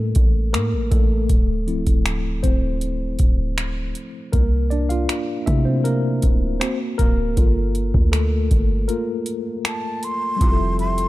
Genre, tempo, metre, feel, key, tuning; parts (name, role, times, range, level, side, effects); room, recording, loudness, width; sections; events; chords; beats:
contemporary R&B; 79 BPM; 4/4; straight; D minor; A4 = 440 Hz
mellow tine electric piano; accompaniment; 0.0-11.1 s; F3 to F5; -24 LUFS; left 2 dB; medium stereo tremolo
warm 808-style bass; bass; 0.0-11.1 s; C1 to C3; -21 LUFS; equal
booming analog drum machine; drums; 0.1-11.1 s; finger snaps, hi-hat, kick drum; -19 LUFS; equal
breathy jazz flute; melody; 9.7-11.1 s; A5 to C6; -24 LUFS; right 1 dB
chorused pulse-width pad; sustained chords; 10.4-11.1 s; F3 to E5; -28 LUFS; right 1 dB
digital ambience; dark, warm production; -18 LUFS; side -17 dB against mid
0.0-10.4 A section
tine electric piano solo 0.0-10.4; break 8.9-10.4
0.0 A7b9; 1.3 Dm9; 4.3 C13; 6.6 Daug7; 7.4 Gm9; 10.4 Fmaj9
0.54 | 1.30 2.06 2.82 3.58 | 4.34 5.09 5.86 6.61 | 7.37 8.13 8.89 9.65 | 10.41